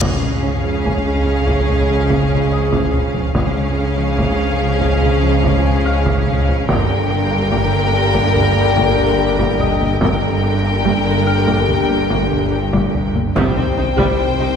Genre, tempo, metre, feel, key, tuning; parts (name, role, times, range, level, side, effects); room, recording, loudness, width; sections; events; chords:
cinematic, hybrid orchestral and electronic film score; 72 BPM; 4/4; straight; A4 = 440 Hz
rich studio violin section; melody; 0.0-14.6 s; F5 to G5; -24 LUFS; left 6 dB
rich symphonic violin section; second line; 0.0-14.6 s; Ab4 to C5; -25 LUFS; left 2 dB
rich symphonic viola section; accompaniment; 0.0-14.5 s; D3 to Eb4; -26 LUFS; equal
mellow French horn section; sustained chords; 0.0-14.6 s; Ab3 to Ab4; -24 LUFS; left 4 dB
mellow trombone section; sustained chords; 0.0-14.6 s; Db3 to G3; -25 LUFS; equal
tight sequenced synth; arpeggios; 0.0-14.5 s; C3 to G4; -25 LUFS; right 1 dB
rich symphonic cello section; bass; 0.0-14.5 s; G2 to Db3; -22 LUFS; right 2 dB
rich symphonic double bass section; bass; 0.0-13.9 s; G1 to Db2; -23 LUFS; right 2 dB
wide detuned saw bass; bass; 0.0-14.6 s; G1 to Db2; -23 LUFS; equal; chorus
solo taiko drums; drums; 0.0-14.6 s; -22 LUFS; equal
sub drop and impact; sound effects; 0.0-3.4, 13.4-14.6 s; -26 LUFS; equal
clear baby grand piano; texture; 0.0-13.4 s; Eb5 to F6; -32 LUFS; left 3 dB
wet concert hall reverb, RT60 2.4 s; recorded in a church or concert hall; -14 LUFS; side -7 dB against mid
0.0-13.4 A section; 13.4-14.6 B section
impact 0.0-3.4, 13.4-14.6
0.0 Db; 6.7 Gm; 13.4 Cm